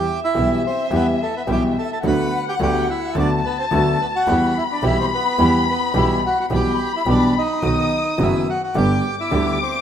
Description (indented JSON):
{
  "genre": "tango",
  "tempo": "107 BPM",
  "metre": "4/4",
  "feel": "rubato",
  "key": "E minor",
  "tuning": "A4 = 442 Hz",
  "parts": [
    { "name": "bandoneon", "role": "melody", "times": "0.0-9.8 s", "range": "A3 to B5", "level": "-23 LUFS", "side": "right 2 dB", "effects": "none" },
    { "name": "dark studio violin section", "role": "second line", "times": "0.0-9.8 s", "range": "E5 to D#6", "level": "-24 LUFS", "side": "left 4 dB", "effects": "slapback echo" },
    { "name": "warm concert grand piano", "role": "accompaniment", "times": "0.0-9.6 s", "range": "F#1 to G4", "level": "-21 LUFS", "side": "left 1 dB", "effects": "none" },
    { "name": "dark studio string section", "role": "stabs", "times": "0.0-9.6 s", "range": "B3 to G4", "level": "-30 LUFS", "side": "right 5 dB", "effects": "none" },
    { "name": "rich double bass", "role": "bass", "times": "0.0-9.6 s", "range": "F#1 to E2", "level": "-25 LUFS", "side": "right 2 dB", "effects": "none" }
  ],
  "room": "moderate lush hall reverb, RT60 2.2 s",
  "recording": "rough home demo mix",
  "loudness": "-17 LUFS",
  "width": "side -9 dB against mid",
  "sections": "0.0-9.8 A section",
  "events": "none",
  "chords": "0.0 Em; 2.0 Bm/D; 4.3 Em; 7.6 B; 8.8 G",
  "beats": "0.36 0.92 1.48 | 2.04 2.60 3.16 3.72 | 4.27 4.83 5.39 5.95 | 6.51 7.07 7.63 8.20 | 8.76 9.32"
}